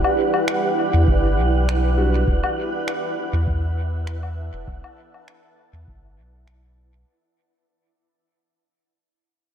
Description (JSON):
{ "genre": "ambient dub", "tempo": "100 BPM", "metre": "4/4", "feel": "swing 54% on 16ths", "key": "E minor", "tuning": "A4 = 440 Hz", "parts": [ { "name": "granular cloud pad", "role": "sustained chords", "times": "0.0-7.1 s", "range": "E4 to A5", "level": "-23 LUFS", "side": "right 1 dB", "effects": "built-in reverb" }, { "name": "woodblock and finger snaps", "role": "drums", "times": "0.0-6.6 s", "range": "none", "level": "-27 LUFS", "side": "left 5 dB", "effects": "dub echo" }, { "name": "wind-like tuned noise texture", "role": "texture", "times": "0.0-7.1 s", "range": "F#5", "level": "-30 LUFS", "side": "right 2 dB", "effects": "built-in reverb" }, { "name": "soft dub sub bass", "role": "bass", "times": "0.9-7.0 s", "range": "E1 to E2", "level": "-20 LUFS", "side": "equal", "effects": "none" }, { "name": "electronic kick drum", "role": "drums", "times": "1.1-6.0 s", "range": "none", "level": "-24 LUFS", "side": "equal", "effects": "none" }, { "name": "warm upright piano", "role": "stabs", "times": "2.0-2.2 s", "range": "G3 to F#4", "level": "-30 LUFS", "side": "right 3 dB", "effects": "dub echo" } ], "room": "light reverb, small room reverb", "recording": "echo-heavy mix", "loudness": "-18 LUFS", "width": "side -9 dB against mid", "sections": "0.0-7.1 A section", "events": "fade-out 0.0-7.1", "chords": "0.0 Em7", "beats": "0.47 1.07 1.67 | 2.27 2.87 3.47 4.07 | 4.67 5.27 5.87 6.47" }